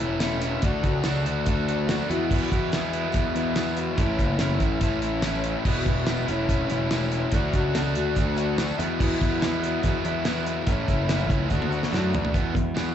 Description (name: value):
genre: classic rock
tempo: 144 BPM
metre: 4/4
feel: straight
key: E mixolydian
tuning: A4 = 440 Hz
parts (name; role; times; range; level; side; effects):
- picked steel-string acoustic guitar; accompaniment; 0.0-12.9 s; E2 to F#4; -33 LUFS; equal; slapback echo
- cranked stack guitar; riff; 0.0-12.9 s; A2 to A4; -30 LUFS; right 12 dB; overdrive, slapback echo
- raw garage guitar; riff; 0.0-12.9 s; E2 to F#4; -29 LUFS; left 9 dB; overdrive, slapback echo
- fuzz picked electric bass; bass; 0.0-12.9 s; E1 to F#2; -27 LUFS; equal; overdrive
- tube shaker; percussion; 0.0-12.2 s; none; -54 LUFS; left 1 dB; none
- damped 70s drum kit; drums; 0.2-12.9 s; crash cymbal, hi-hat, kick drum, snare drum, tambourine, toms; -27 LUFS; equal; none
room: light reverb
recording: live gig heard through the venue's PA, club reverb, nothing above 8.0 kHz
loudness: -22 LUFS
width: side -9 dB against mid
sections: 0.0-12.3 A section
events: drum fill 11.5-12.3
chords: 0.0 A/E; 0.6 D; 2.1 Eadd9; 4.0 A; 5.7 Eadd9; 6.3 A/E; 7.3 D; 8.8 Eadd9; 10.7 A; 11.5 D; 12.3 E